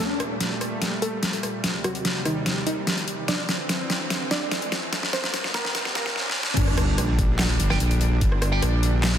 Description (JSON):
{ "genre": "heavy wobble dubstep", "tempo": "146 BPM", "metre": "4/4", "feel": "half-time", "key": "G minor", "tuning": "A4 = 444 Hz", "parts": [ { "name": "wide unison pluck", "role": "melody", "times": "0.0-6.2 s", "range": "Eb3 to D5", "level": "-31 LUFS", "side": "right 1 dB", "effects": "cassette tape, ping-pong delay" }, { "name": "supersaw pad", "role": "sustained chords", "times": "0.0-9.2 s", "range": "Eb2 to D4", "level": "-31 LUFS", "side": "right 1 dB", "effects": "sidechain pumping" }, { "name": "riser and sub drop", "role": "sound effects", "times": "0.0-8.2 s", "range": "none", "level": "-32 LUFS", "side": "left 1 dB", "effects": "none" }, { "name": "dubstep drum kit", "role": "drums", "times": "0.2-9.1 s", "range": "crash cymbal, handclaps, hi-hat, rim click, snare drum", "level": "-26 LUFS", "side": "equal", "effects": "overdrive, studio reverb" }, { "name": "wobble bass", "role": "bass", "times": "6.6-9.2 s", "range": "G1 to Bb1", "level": "-22 LUFS", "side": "equal", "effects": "chorus, overdrive" }, { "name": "electronic kick drum", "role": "drums", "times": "6.6-8.3 s", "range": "none", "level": "-23 LUFS", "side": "equal", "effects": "overdrive, studio reverb" }, { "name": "distorted electric guitar", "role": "stabs", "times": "7.7-8.6 s", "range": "G4 to G5", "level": "-31 LUFS", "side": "right 2 dB", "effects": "overdrive, ping-pong delay" } ], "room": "moderate lush hall reverb, RT60 1.9 s", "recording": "dense, heavily limited modern master, high-pass filter", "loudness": "-22 LUFS", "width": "side -10 dB against mid", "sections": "0.0-6.6 A section; 6.6-9.2 B section", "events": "build-up 0.0-6.6; drum fill 0.0-6.2, 6.2-6.6; riser 0.0-6.6; filter sweep 0.0-6.6; drop 6.6-9.2; impact 6.6-8.2", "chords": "0.0 Gmadd9; 1.6 Eb6; 3.3 Cadd9; 4.9 Eb6; 6.6 G5" }